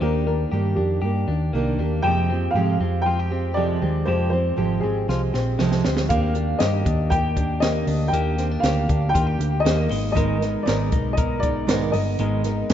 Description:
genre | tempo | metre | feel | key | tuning
jangly indie pop | 118 BPM | 4/4 | straight | Eb major | A4 = 440 Hz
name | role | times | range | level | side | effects
dark upright piano | melody | 0.0-12.7 s | G4 to G5 | -26 LUFS | left 1 dB | none
fingerpicked steel-string acoustic guitar | accompaniment | 0.0-12.7 s | F2 to Bb4 | -26 LUFS | right 6 dB | none
clean electric guitar | arpeggios | 0.0-12.7 s | Eb3 to Bb4 | -29 LUFS | left 5 dB | digital delay
hollow-body short-scale picked electric bass | bass | 0.0-12.7 s | G1 to Ab2 | -24 LUFS | equal | none
compact cocktail drum kit | drums | 5.1-12.7 s | hi-hat, kick drum, snare drum | -25 LUFS | equal | none
room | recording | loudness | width
moderate lush hall reverb, RT60 2.2 s | rough home demo mix, nothing above 7.7 kHz | -19 LUFS | side -10 dB against mid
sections
0.0-12.7 A section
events
drum fill 5.1-6.1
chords
0.0 Ebmaj7; 2.0 Fmadd9; 6.1 Ebmaj7; 9.9 Abmadd9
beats
| 0.01 0.52 1.03 1.54 | 2.04 2.55 3.06 3.57 | 4.08 4.58 5.09 5.60 | 6.11 6.61 7.12 7.63 | 8.13 8.64 9.15 9.66 | 10.16 10.67 11.18 11.69 | 12.19 12.70

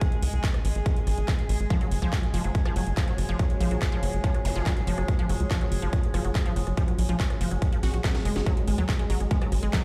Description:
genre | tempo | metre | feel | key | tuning
psychedelic trance | 142 BPM | 4/4 | straight | unclear | A4 = 440 Hz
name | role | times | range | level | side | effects
overtone-sweeping drone | sustained chords | 0.0-9.8 s | G#3 to G#4 | -40 LUFS | equal | chorus, built-in reverb, sidechain pumping
electronic kick drum | drums | 0.0-9.8 s | none | -28 LUFS | equal | studio reverb
techno drum kit | drums | 0.0-9.8 s | handclaps, hi-hat, rim click, snare drum | -39 LUFS | equal | studio reverb
ethereal airy pad | texture | 0.0-9.8 s | F#4 to G#5 | -42 LUFS | equal | ensemble chorus, built-in reverb, sidechain pumping
tight sequencer bass | bass | 0.2-9.7 s | F#1 to D#2 | -28 LUFS | equal | none
unison pluck | riff | 1.7-9.8 s | E#3 to F#4 | -34 LUFS | equal | sidechain pumping, delay
zap | sound effects | 4.5-4.6 s | none | -42 LUFS | equal | none
room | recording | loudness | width
little or no reverb | played on a big sound system in a bare room, large studio reverb | -26 LUFS | mono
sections
0.0-9.8 A section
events
drum fill 7.8-8.5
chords
0.0 G#5; 1.7 F#5; 8.5 G#5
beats
| 0.01 0.44 0.86 1.28 | 1.70 2.13 2.55 2.97 | 3.39 3.82 4.24 4.66 | 5.08 5.51 5.93 6.35 | 6.77 7.20 7.62 8.04 | 8.46 8.89 9.31 9.73

